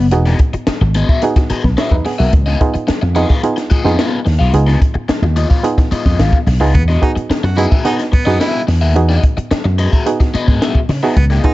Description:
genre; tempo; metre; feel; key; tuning
funk; 109 BPM; 4/4; straight; unclear; A4 = 440 Hz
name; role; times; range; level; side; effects
overdriven electric guitar; accompaniment; 0.0-11.5 s; B3 to E#5; -20 LUFS; left 4 dB; phaser
slap bass with an envelope filter; bass; 0.0-11.4 s; E1 to C#3; -13 LUFS; equal; none
muted clav; stabs; 0.1-11.5 s; A#3 to C#5; -18 LUFS; right 3 dB; none
compact cocktail drum kit; drums; 0.1-11.5 s; hi-hat, kick drum, snare drum; -15 LUFS; equal; none
edgy baritone saxophone; second line; 6.7-11.5 s; B3 to F#4; -24 LUFS; right 2 dB; none
room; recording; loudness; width
small room reverb; dark, warm production, nothing above 7.9 kHz; -11 LUFS; side -17 dB against mid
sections
0.0-11.5 A section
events
none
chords
0.0 Emaj9; 2.3 C#9; 6.7 Emaj9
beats
| 0.12 0.67 1.22 1.78 | 2.33 2.88 3.43 3.99 | 4.54 5.09 5.64 6.20 | 6.75 7.30 7.85 8.41 | 8.96 9.51 10.06 10.62 | 11.17

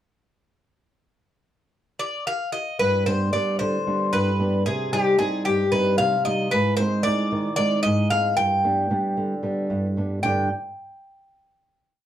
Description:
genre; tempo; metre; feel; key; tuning
greek folk, Greek bouzouki band; 226 BPM (eighths); 7/8; straight; G phrygian dominant; A4 = 440 Hz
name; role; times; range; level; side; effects
Greek bouzouki; melody; 2.0-10.5 s; G4 to G5; -22 LUFS; left 1 dB; none
flamenco guitar; accompaniment; 2.8-10.5 s; G2 to D5; -23 LUFS; right 1 dB; none
room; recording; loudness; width
wet small room reverb, RT60 0.6 s; heard from further back in the room; -20 LUFS; side -11 dB against mid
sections
0.9-2.8 pickup bar; 2.8-10.2 A section; 10.2-12.1 final chord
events
none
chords
0.9 N.C.; 2.8 G; 4.7 Cm; 6.5 Ab; 8.4 G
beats
| 0.94 1.21 1.47 1.74 2.00 2.27 2.54 | 2.80 3.07 3.33 3.60 3.87 4.13 4.40 | 4.66 4.93 5.19 5.46 5.72 5.99 6.25 | 6.52 6.79 7.05 7.32 7.58 7.85 8.11 | 8.38 8.64 8.91 9.17 9.44 9.70 9.97 | 10.23

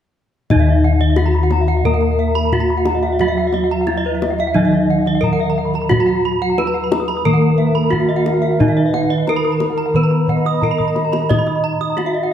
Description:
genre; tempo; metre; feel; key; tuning
Balinese gamelan; 89 BPM; 4/4; straight; Eb pelog; A4 = 441 Hz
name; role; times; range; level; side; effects
gamelan-type bronze metallophone; melody; 0.5-12.3 s; Eb4 to Eb5; -20 LUFS; equal; none
gamelan-type bronze metallophone; accompaniment; 0.5-12.3 s; Eb3 to Eb4; -24 LUFS; right 8 dB; none
gamelan-type bronze metallophone; arpeggios; 0.5-12.2 s; Cb5-20c to Eb6; -25 LUFS; left 5 dB; none
gamelan-type bossed gongs; bass; 0.5-12.3 s; Eb2 to Eb5; -18 LUFS; left 2 dB; none
kendang; percussion; 0.5-12.2 s; none; -24 LUFS; left 2 dB; none
gamelan-type bronze metallophone; arpeggios; 0.6-12.3 s; Eb5 to Eb6; -24 LUFS; right 5 dB; none
breathy mellow bansuri; second line; 1.8-11.7 s; Bb4-30c to Gb5-27c; -26 LUFS; right 5 dB; none
room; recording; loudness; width
light reverb; close, detailed microphones; -14 LUFS; side -9 dB against mid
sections
0.5-12.3 A section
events
drum fill 10.8-11.3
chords
none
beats
| 0.51 1.18 1.85 2.53 | 3.20 3.88 4.55 5.23 | 5.90 6.57 7.25 7.92 | 8.60 9.27 9.95 10.62 | 11.29 11.97

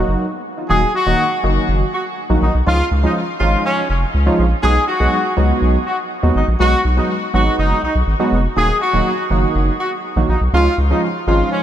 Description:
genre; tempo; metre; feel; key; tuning
dance-pop; 122 BPM; 4/4; straight; Eb minor; A4 = 440 Hz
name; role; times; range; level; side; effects
warm analog keys; accompaniment; 0.0-11.6 s; Eb3 to G#4; -19 LUFS; right 1 dB; chorus
saturated sub bass; bass; 0.0-11.4 s; Eb1 to D#2; -16 LUFS; equal; none
clear horn section; melody; 0.7-11.6 s; Db4 to Ab4; -18 LUFS; left 1 dB; ping-pong delay
room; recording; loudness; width
light reverb, small room ambience; none; -14 LUFS; side -10 dB against mid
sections
0.7-11.6 A section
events
break 0.2-0.7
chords
0.0 Ebm; 2.7 Dbadd9; 4.6 B6; 6.6 Abm7; 8.6 Ebm; 10.5 Dbadd9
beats
0.21 | 0.70 1.19 1.68 2.17 | 2.67 3.16 3.65 4.14 | 4.63 5.12 5.62 6.11 | 6.60 7.09 7.58 8.07 | 8.57 9.06 9.55 10.04 | 10.53 11.03 11.52

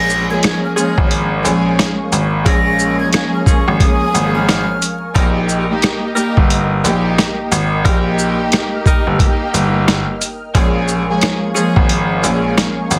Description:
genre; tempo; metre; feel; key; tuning
hip hop, boom-bap hip-hop; 89 BPM; 4/4; swing 61% on 16ths; Bb dorian; A4 = 440 Hz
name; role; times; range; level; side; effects
breathy jazz flute; melody; 0.0-5.1 s; Db6 to Bb6; -23 LUFS; equal; tape echo
dark studio string section; accompaniment; 0.0-12.9 s; F3 to Ab4; -21 LUFS; equal; cassette tape
warm analog pad; sustained chords; 0.0-13.0 s; Bb4 to F6; -30 LUFS; equal; chorus
bright grand piano; bass; 0.0-13.0 s; G1 to Bb1; -20 LUFS; equal; none
boom bap sampler-style drum kit; drums; 0.1-13.0 s; hi-hat, kick drum, rim click, shaker, snare drum; -17 LUFS; equal; none
warm saxophone section; stabs; 0.8-11.8 s; F3 to Bb4; -26 LUFS; equal; tape echo
room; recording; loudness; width
little or no reverb; dense, heavily limited modern master, vinyl crackle; -15 LUFS; mono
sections
0.0-13.0 A section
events
none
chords
0.0 Bbm7; 5.2 Eb; 10.5 Bbm7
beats
0.44 1.11 1.78 | 2.46 3.13 3.81 4.48 | 5.16 5.83 6.50 7.18 | 7.85 8.53 9.20 9.87 | 10.55 11.22 11.90 12.57

